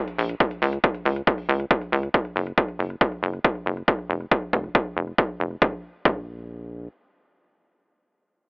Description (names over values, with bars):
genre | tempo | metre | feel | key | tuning
uplifting trance | 138 BPM | 4/4 | straight | Bb minor | A4 = 441 Hz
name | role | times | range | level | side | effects
electronic hi-hat | drums | 0.1-5.6 s | none | -47 LUFS | equal | none
tight sequencer bass | bass | 0.2-6.9 s | F1 to Db2 | -25 LUFS | equal | sidechain pumping
electronic kick drum | drums | 0.4-6.2 s | none | -22 LUFS | equal | none
room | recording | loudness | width
little or no reverb | telephone sound | -21 LUFS | side -33 dB against mid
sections
0.0-5.6 A section; 5.6-8.5 B section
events
none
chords
none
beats
| 0.40 0.83 1.27 1.70 | 2.14 2.57 3.01 3.44 | 3.88 4.31 4.75 5.18 | 5.62 6.05 6.49